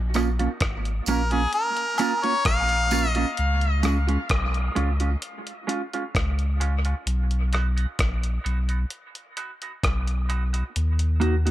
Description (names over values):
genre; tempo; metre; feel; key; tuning
dub reggae; 65 BPM; 4/4; straight; Bb phrygian; A4 = 444 Hz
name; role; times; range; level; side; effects
warm sub bass; bass; 0.0-11.5 s; Ab1 to Eb2; -23 LUFS; equal; none
mellow electric guitar; accompaniment; 0.1-11.5 s; Ab3 to F#4; -29 LUFS; right 5 dB; lush chorus, high-pass filter, dub echo
dusty soul sampler-style drum kit; drums; 0.1-11.5 s; hi-hat, kick drum, rim click; -28 LUFS; equal; dub echo
tambourine and woodblock; percussion; 0.1-4.1 s; none; -34 LUFS; right 1 dB; high-pass filter on perc, dub echo
clear harmonica; melody; 1.1-3.3 s; Ab4 to F5; -25 LUFS; left 2 dB; dub echo
room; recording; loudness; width
light reverb; none; -22 LUFS; side -14 dB against mid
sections
0.0-11.5 A section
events
part muted 3.4-11.5; filter sweep 3.4-10.8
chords
0.0 Bbm; 3.4 Db; 7.1 B; 10.8 Ebm